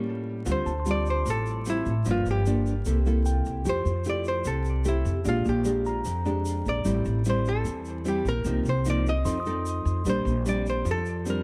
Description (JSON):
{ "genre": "bossa nova", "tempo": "150 BPM", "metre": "4/4", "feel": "straight", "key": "D minor", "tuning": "A4 = 442 Hz", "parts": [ { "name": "archtop guitar, miked and amplified", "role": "melody", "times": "0.0-11.4 s", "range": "E4 to Eb5", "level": "-33 LUFS", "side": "equal", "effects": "tape echo" }, { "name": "nylon-string guitar", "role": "accompaniment", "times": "0.0-11.4 s", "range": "F2 to A4", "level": "-32 LUFS", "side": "equal", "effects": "none" }, { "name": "upright bass", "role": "bass", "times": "0.5-11.4 s", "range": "G1 to F2", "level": "-30 LUFS", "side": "equal", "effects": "none" }, { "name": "tube shaker", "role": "percussion", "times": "0.5-11.4 s", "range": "none", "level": "-47 LUFS", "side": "equal", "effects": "none" }, { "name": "tine electric piano", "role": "accompaniment", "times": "0.7-10.1 s", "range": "G5 to Eb6", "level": "-38 LUFS", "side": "equal", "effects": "none" } ], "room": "light reverb, small room ambience", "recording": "vinyl crackle", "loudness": "-26 LUFS", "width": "mono", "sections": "0.5-11.4 A section", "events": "break 0.0-0.5", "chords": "0.5 Dm11; 2.1 Gm7; 2.9 C6; 3.7 Fmaj9; 5.3 Bb6; 6.9 Am7; 8.5 Cm7; 9.3 F7; 10.1 Bb69", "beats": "0.06 | 0.46 0.86 1.26 1.66 | 2.06 2.46 2.86 3.26 | 3.66 4.06 4.46 4.86 | 5.25 5.66 6.05 6.46 | 6.86 7.25 7.65 8.05 | 8.45 8.85 9.25 9.65 | 10.05 10.45 10.85 11.25" }